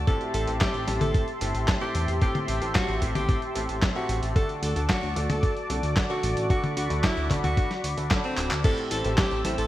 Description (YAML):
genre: italo disco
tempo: 112 BPM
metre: 4/4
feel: straight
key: A dorian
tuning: A4 = 438 Hz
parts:
  - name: warm analog pad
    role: sustained chords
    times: 0.0-9.7 s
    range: F#4 to E6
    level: -32 LUFS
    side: equal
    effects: chorus
  - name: chorused synth bass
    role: bass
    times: 0.0-9.7 s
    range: D1 to E2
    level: -29 LUFS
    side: equal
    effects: none
  - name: breathy alto saxophone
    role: melody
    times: 0.1-9.7 s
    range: C4 to A4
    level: -31 LUFS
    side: equal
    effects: ping-pong delay
  - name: clear grand piano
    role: stabs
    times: 0.1-9.7 s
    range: A2 to A4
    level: -33 LUFS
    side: left 1 dB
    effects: none
  - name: dusty soul sampler-style drum kit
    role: drums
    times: 0.1-9.7 s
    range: crash cymbal, handclaps, hi-hat, snare drum, toms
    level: -30 LUFS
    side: equal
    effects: none
  - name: electronic kick drum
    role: drums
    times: 0.1-9.3 s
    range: none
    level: -25 LUFS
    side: equal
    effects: none
room: light reverb, digital ambience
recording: bright 1980s-style digital production, vinyl crackle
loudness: -23 LUFS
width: side -14 dB against mid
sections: 0.0-8.6 A section; 8.6-9.7 B section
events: drum fill 8.4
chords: 0.1 Am7; 4.4 D; 8.6 Am7